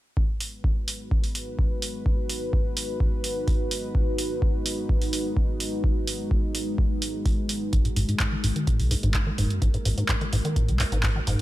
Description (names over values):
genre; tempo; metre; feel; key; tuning
acid house; 127 BPM; 4/4; straight; G# minor; A4 = 440 Hz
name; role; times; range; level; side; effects
dark analog pad; sustained chords; 0.9-11.4 s; G#3 to B4; -31 LUFS; equal; chorus, sidechain pumping
electronic kick drum; drums; 0.2-11.1 s; none; -24 LUFS; equal; none
punchy analog drum machine; drums; 0.4-11.4 s; handclaps, hi-hat; -30 LUFS; right 1 dB; none
deep acid bass; riff; 7.7-11.4 s; F#2 to G#3; -27 LUFS; equal; sidechain pumping
round analog bass; bass; 7.7-11.4 s; F#1 to B1; -26 LUFS; equal; sidechain pumping
room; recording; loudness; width
digital ambience; none; -23 LUFS; side -16 dB against mid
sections
0.2-11.4 A section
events
none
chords
0.2 G#m7